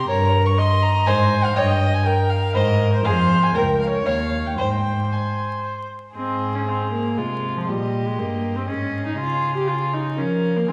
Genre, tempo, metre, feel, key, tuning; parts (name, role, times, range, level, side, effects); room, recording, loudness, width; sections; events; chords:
quick classical-period movement for string quartet; 120 BPM; 3/4; straight; Ab major; A4 = 440 Hz
dark violin; melody; 0.0-10.7 s; C5 to Db6; -29 LUFS; equal
warm violin; second line; 0.0-10.7 s; F4 to Db5; -30 LUFS; equal
rich viola; accompaniment; 0.0-10.7 s; F3 to Eb5; -26 LUFS; equal
rich cello; bass; 0.0-10.7 s; Db2 to F3; -24 LUFS; equal
wet scoring stage reverb, RT60 1.6 s; heard from further back in the room, vinyl crackle; -21 LUFS; mono
0.0-6.2 A section; 6.2-10.7 B section
0.1 Eb7/G; 1.1 Ab; 1.6 Eb7/G; 2.5 Ab; 3.1 Fm; 3.6 Bbm/Db; 4.1 Eb9; 4.6 Ab; 7.7 Eb/Bb; 8.7 Ab5; 9.2 Db